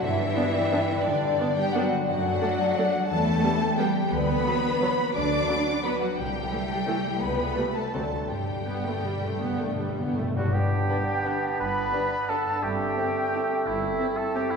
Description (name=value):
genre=classical, orchestral ballroom waltz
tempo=153-190 BPM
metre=3/4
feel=rubato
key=G major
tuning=A4 = 440 Hz
part: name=warm symphonic violin section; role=melody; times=0.0-14.4 s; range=D5 to D6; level=-31 LUFS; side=left 3 dB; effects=none
part: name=rich symphonic violin section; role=second line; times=0.0-14.4 s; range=D4 to D5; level=-32 LUFS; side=left 2 dB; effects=none
part: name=concert harp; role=arpeggios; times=0.0-14.6 s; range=F#2 to B5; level=-30 LUFS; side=left 3 dB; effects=none
part: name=rich symphonic cello section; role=bass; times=0.0-13.9 s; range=G2 to D4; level=-32 LUFS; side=right 3 dB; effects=none
part: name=rich symphonic double bass section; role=bass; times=0.0-13.9 s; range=G1 to G2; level=-34 LUFS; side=right 2 dB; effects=none
part: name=timpani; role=percussion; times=0.0-0.5, 8.3-10.5 s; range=G2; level=-31 LUFS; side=left 1 dB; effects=none
part: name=rich symphonic viola section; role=accompaniment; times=0.4-14.4 s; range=E3 to D4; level=-33 LUFS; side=right 2 dB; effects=none
part: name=bright concert flute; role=second line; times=10.4-14.6 s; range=E5 to B5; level=-32 LUFS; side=equal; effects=none
part: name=clear oboe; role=second line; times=10.4-14.6 s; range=E4 to B4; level=-30 LUFS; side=right 2 dB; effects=none
part: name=bright clarinet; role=second line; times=10.5-14.6 s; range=C4 to D4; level=-34 LUFS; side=equal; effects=none
part: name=warm bassoon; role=accompaniment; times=10.5-14.6 s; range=A3 to B3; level=-30 LUFS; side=right 3 dB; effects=none
part: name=dark French horn section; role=sustained chords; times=10.9-14.5 s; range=C4 to B4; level=-35 LUFS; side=left 4 dB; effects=none
room=wet concert hall reverb, RT60 1.9 s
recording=heard from further back in the room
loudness=-23 LUFS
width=side -5 dB against mid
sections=0.0-10.5 A section; 10.5-14.6 A section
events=timpani fill 8.3-10.5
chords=0.0 G; 2.1 D/F#; 3.1 Em; 4.1 Bm/D; 6.2 Am7/C; 7.2 A7/C#; 7.9 D7; 8.3 G; 12.6 Am7/G